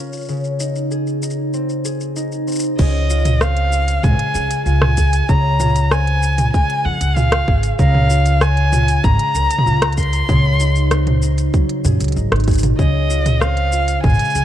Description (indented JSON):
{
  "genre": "folktronica",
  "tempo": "96 BPM",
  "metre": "4/4",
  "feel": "straight",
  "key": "Db major",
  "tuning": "A4 = 441 Hz",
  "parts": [
    { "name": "concert harp", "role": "arpeggios", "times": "0.0-14.4 s", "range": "Db3 to Bb4", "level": "-21 LUFS", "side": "left 1 dB", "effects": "tape echo" },
    { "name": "organic electronic drum kit", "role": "drums", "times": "0.1-14.4 s", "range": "crash cymbal, hi-hat, rim click, shaker, toms", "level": "-21 LUFS", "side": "right 1 dB", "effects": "none" },
    { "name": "warm violin", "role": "melody", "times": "2.8-14.4 s", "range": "Eb5 to C6", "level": "-20 LUFS", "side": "equal", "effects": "tape echo" },
    { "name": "upright bass", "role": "bass", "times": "2.8-14.4 s", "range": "Ab1 to Gb2", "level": "-17 LUFS", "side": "equal", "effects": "none" },
    { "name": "electronic kick drum", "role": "drums", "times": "2.8-14.2 s", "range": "none", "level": "-16 LUFS", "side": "equal", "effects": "none" }
  ],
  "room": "little or no reverb",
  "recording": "none",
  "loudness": "-14 LUFS",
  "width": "side -11 dB against mid",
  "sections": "0.0-2.8 A section; 2.8-14.4 B section",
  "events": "none",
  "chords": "0.3 Ab/Db; 2.8 Dbmaj7; 7.8 Bbm7/Db; 10.3 Ab7/Db; 12.8 Dbmaj7"
}